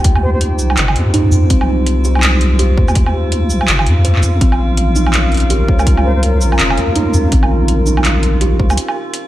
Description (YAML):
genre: half-time drum and bass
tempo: 165 BPM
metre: 4/4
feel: swing 60% on 16ths, half-time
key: C phrygian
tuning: A4 = 435 Hz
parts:
  - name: dark analog pad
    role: sustained chords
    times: 0.0-9.3 s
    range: Db4 to G5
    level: -22 LUFS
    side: equal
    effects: chorus, phaser, sidechain pumping
  - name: kalimba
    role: arpeggios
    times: 0.0-9.3 s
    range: C4 to C5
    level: -22 LUFS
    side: right 2 dB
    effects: analog delay
  - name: deep soft wobble bass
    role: bass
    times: 0.0-8.8 s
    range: F1 to F2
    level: -13 LUFS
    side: equal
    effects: chorus
  - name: drum and bass drum kit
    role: drums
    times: 0.0-9.2 s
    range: handclaps, hi-hat, shaker, woodblock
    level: -18 LUFS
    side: right 1 dB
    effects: none
  - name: electronic kick drum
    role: drums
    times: 0.0-8.7 s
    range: none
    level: -13 LUFS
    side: equal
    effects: none
  - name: metallic inharmonic drone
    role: texture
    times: 0.0-9.3 s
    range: F4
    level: -26 LUFS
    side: left 1 dB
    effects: chorus, built-in reverb
  - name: silver concert flute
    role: melody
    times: 0.2-0.4, 6.0-6.2 s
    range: C5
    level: -27 LUFS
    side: right 1 dB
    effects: none
room: light reverb, digital ambience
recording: none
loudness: -11 LUFS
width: side -14 dB against mid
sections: 0.0-9.3 A section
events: break 8.8-9.3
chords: 0.0 Cm; 4.4 Bbm